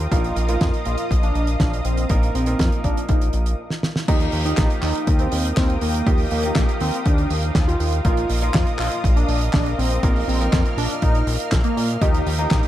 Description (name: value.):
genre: italo disco.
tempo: 121 BPM.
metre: 4/4.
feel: straight.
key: Eb major.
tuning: A4 = 438 Hz.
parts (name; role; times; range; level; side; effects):
lush unison pad; sustained chords; 0.0-12.7 s; Bb4 to F6; -29 LUFS; equal; chorus.
bright concert grand piano; stabs; 0.0-12.7 s; Bb2 to Bb4; -30 LUFS; right 4 dB; none.
fat analog bass; bass; 0.0-12.6 s; Bb1 to Bb2; -22 LUFS; equal; none.
wide unison lead; melody; 0.1-12.6 s; Bb3 to F4; -26 LUFS; equal; digital delay.
damped 70s drum kit; drums; 0.1-12.7 s; crash cymbal, handclaps, hi-hat, snare drum; -26 LUFS; right 1 dB; none.
electronic kick drum; drums; 0.1-12.6 s; none; -20 LUFS; equal; overdrive.
room: small room reverb.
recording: dark, warm production.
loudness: -18 LUFS.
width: side -13 dB against mid.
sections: 0.0-4.1 A section; 4.1-12.7 B section.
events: stop 3.6-4.1; drum fill 3.7-4.1.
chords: 0.1 Bbsus4; 4.1 Ebadd9; 8.0 Bbsus4.